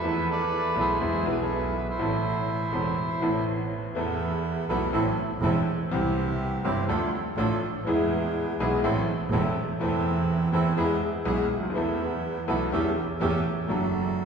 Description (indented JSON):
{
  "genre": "tango",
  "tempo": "123 BPM",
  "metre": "4/4",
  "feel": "rubato",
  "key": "A minor",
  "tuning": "A4 = 441 Hz",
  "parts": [
    { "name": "bandoneon", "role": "melody", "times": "0.0-3.4 s", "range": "E4 to E5", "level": "-28 LUFS", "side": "right 1 dB", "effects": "none" },
    { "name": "bright upright piano", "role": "accompaniment", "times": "0.0-14.2 s", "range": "E1 to B4", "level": "-28 LUFS", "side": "left 1 dB", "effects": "none" },
    { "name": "clear double bass", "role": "bass", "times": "0.0-14.2 s", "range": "E1 to E2", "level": "-29 LUFS", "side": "right 3 dB", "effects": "none" },
    { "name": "bandoneon", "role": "stabs", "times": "4.0-14.2 s", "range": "B3 to A4", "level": "-31 LUFS", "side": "right 2 dB", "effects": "none" }
  ],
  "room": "wet concert hall reverb, RT60 2.5 s",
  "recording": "recorded in a church or concert hall, small room ambience",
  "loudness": "-24 LUFS",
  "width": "side -6 dB against mid",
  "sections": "0.0-4.0 A section; 4.0-14.2 B section",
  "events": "none",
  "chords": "0.0 Esus4; 1.0 E; 2.0 Amadd9; 4.0 Esus4; 4.9 Am; 5.9 C; 6.9 Dm; 7.9 E; 8.8 Am/E; 10.8 E; 11.7 Esus4; 12.7 A7/E; 13.7 D/F#"
}